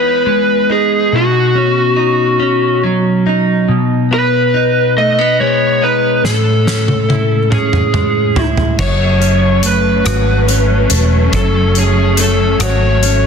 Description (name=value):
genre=six-eight pop ballad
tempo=47 BPM (dotted quarters)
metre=6/8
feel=straight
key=unclear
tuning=A4 = 439 Hz
part: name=lead guitar through a small cranked amp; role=melody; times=0.0-13.3 s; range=F#4 to D#5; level=-14 LUFS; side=left 2 dB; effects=overdrive
part: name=direct-recorded clean electric guitar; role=accompaniment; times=0.0-13.3 s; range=A2 to F#4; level=-15 LUFS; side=right 1 dB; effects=double-tracked left and right
part: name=loose indie drum kit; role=drums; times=6.2-13.2 s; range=crash cymbal, hi-hat, kick drum, rim click, snare drum, toms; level=-18 LUFS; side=equal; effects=soft clipping on snare
part: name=warm studio string section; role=sustained chords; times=8.8-13.3 s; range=F#3 to C#4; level=-21 LUFS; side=equal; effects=none
part: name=vintage muted fingered electric bass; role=bass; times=8.8-13.3 s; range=E1 to G#1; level=-14 LUFS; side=equal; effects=none
room=moderate echo chamber reverb, RT60 2.2 s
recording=dense, heavily limited modern master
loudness=-10 LUFS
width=side -6 dB against mid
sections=0.0-8.8 A section; 8.8-13.3 B section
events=drum fill 6.2-8.8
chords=0.0 Emaj7; 1.1 Badd9; 3.7 B6; 6.2 Amaj7; 8.8 F#m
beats=| 1.13 2.41 | 3.68 4.96 | 6.24 7.51 | 8.79 10.06 | 11.34 12.61